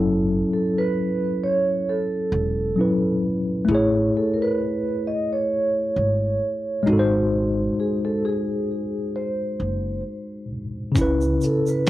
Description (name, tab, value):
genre	lo-fi hip hop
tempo	66 BPM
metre	4/4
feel	swing 56% on 16ths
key	unclear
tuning	A4 = 438 Hz
part	mellow tine electric piano	accompaniment	0.0-11.9 s	C#3 to C#5	-22 LUFS	left 1 dB	medium stereo tremolo, cassette tape, low-pass filter
part	upright bass	bass	0.0-11.4 s	E1 to C#2	-25 LUFS	equal	none
part	vibraphone with soft mallets	melody	0.5-11.9 s	G#4 to D#5	-25 LUFS	right 2 dB	low-pass filter, cassette tape
part	dusty soul sampler-style drum kit	drums	11.0-11.9 s	hi-hat, kick drum, shaker, snare drum	-22 LUFS	equal	cassette tape
part	egg shaker	percussion	11.0-11.9 s	none	-42 LUFS	right 5 dB	none
room	moderate studio reverb, RT60 0.6 s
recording	home recording on cassette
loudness	-20 LUFS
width	side -15 dB against mid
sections	0.0-11.9 A section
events	none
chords	0.0 F#m7; 3.7 Amaj7; 6.9 G#7; 11.0 C#m7